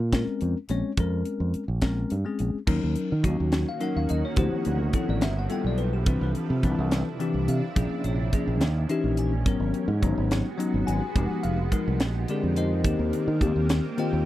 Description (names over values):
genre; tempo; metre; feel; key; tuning
electric jazz fusion; 71 BPM (dotted quarters); 6/8; straight; unclear; A4 = 439 Hz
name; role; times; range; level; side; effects
fingered electric bass; bass; 0.0-14.2 s; F1 to Eb3; -26 LUFS; right 1 dB; none
bell-like tine electric piano; accompaniment; 0.1-14.3 s; D3 to Ab5; -28 LUFS; left 3 dB; phaser
crisp fusion drum kit; drums; 0.1-14.1 s; crash cymbal, hi-hat, kick drum, snare drum; -26 LUFS; right 1 dB; none
granular cloud pad; sustained chords; 3.4-14.3 s; C3 to G4; -34 LUFS; right 4 dB; built-in reverb
room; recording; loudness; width
little or no reverb; dry, close 1970s-style studio recording; -23 LUFS; side -14 dB against mid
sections
0.0-2.7 A section; 2.7-14.3 B section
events
tine electric piano fill 8.6-9.5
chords
0.0 Bbm9; 2.7 Ebm7; 4.4 Dm11; 5.2 G9; 6.1 Cmaj9; 7.8 Bbm7; 8.6 Eb7b9; 9.5 Abm11; 11.2 Fm9; 12.0 Bb13; 12.8 Eb6